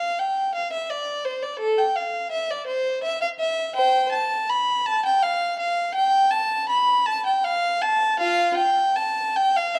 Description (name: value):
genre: classical, baroque-style suite movement for unaccompanied violin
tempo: 55 BPM (dotted quarters)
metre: 6/8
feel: uneven beats, rubato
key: unclear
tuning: A4 = 438 Hz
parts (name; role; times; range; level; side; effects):
- rich violin; solo; 0.0-9.8 s; F4 to B5; -23 LUFS; equal; none
room: moderate recital hall reverb, RT60 1.3 s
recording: dark, warm production, vinyl crackle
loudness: -23 LUFS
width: mono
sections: 0.0-9.8 A section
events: none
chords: none